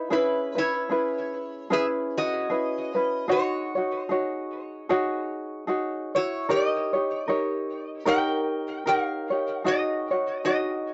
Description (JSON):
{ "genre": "Hawaiian", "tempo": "76 BPM", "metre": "4/4", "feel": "swing 57% on 8ths", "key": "C# minor", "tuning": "A4 = 440 Hz", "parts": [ { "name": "tenor ukulele", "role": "accompaniment", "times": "0.0-10.9 s", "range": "C#4 to C#5", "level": "-28 LUFS", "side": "equal", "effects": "cassette tape" }, { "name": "metal-body resonator slide guitar", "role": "melody", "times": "0.1-10.9 s", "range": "E4 to G5", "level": "-30 LUFS", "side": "equal", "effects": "cassette tape, tape echo" } ], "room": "wet booth ambience, RT60 0.2 s", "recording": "home recording on cassette, nothing above 7.8 kHz", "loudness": "-27 LUFS", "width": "mono", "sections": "0.1-10.9 A section", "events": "none", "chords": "0.1 C#m7; 3.3 G#7sus4; 6.5 D#7; 9.6 G#7sus4" }